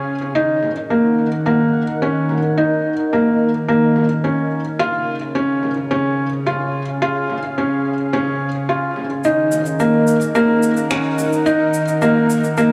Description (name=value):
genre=piano and strings electronica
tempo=108 BPM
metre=4/4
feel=straight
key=Eb minor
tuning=A4 = 440 Hz
part: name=lush unison pad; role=sustained chords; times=0.0-12.7 s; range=Db3 to Gb5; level=-23 LUFS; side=equal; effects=chorus
part: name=felt-muted upright piano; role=riff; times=0.0-12.7 s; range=Bb3 to F4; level=-19 LUFS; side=equal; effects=digital delay
part: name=deep house drum kit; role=drums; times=0.6-12.7 s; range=finger snaps, shaker, toms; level=-32 LUFS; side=equal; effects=overdrive, high-pass filter on toms, low-pass filter on toms, high-pass filter on perc, low-pass filter on perc, high-pass filter on snare, low-pass filter on snare, high-pass filter on room, low-pass filter on room
room=moderate huge ambient reverb, RT60 4.6 s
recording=none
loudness=-18 LUFS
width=mono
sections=0.4-12.7 A section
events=build-up 0.4-12.7; filter sweep on analog synth pad 0.4-12.7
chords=0.4 Ebm; 4.8 Db; 9.2 Ebm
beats=| 0.35 0.91 1.46 2.02 | 2.57 3.13 3.69 4.24 | 4.80 5.35 5.91 6.46 | 7.02 7.57 8.13 8.69 | 9.24 9.80 10.35 10.91 | 11.46 12.02 12.57